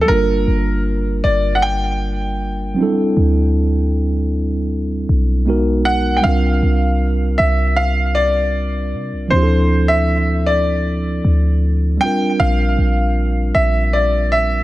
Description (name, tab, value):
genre	contemporary R&B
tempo	78 BPM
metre	4/4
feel	straight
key	unclear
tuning	A4 = 440 Hz
part	clear grand piano	melody	0.0-14.6 s	A4 to G5	-19 LUFS	equal	digital delay
part	mellow tine electric piano	accompaniment	0.0-14.6 s	F3 to Bb4	-20 LUFS	right 1 dB	slow stereo tremolo
part	clean 808-style bass	bass	0.0-14.6 s	G1 to C3	-17 LUFS	equal	none
room	studio ambience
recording	none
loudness	-14 LUFS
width	side -16 dB against mid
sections	0.0-6.2 A section; 6.2-14.6 B section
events	none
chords	0.1 Gm7; 2.8 D7sus4; 5.5 Abm9; 6.2 C7sus4; 9.3 Dm9; 12.0 Bb6